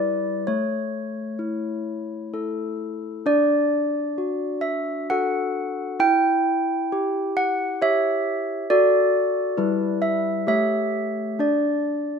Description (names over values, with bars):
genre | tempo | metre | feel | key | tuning
classical, tune for handbells | 66 BPM | 3/4 | straight | D major | A4 = 439 Hz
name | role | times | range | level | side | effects
handbells | solo | 0.0-12.2 s | G3 to G5 | -21 LUFS | equal | none
room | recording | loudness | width
light reverb | close, detailed microphones | -21 LUFS | side -6 dB against mid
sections
0.0-12.2 A section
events
none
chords
0.5 A; 3.3 D; 6.0 C#dim/E; 8.7 D/F#; 9.6 Em7/G; 10.4 A7; 11.4 N.C.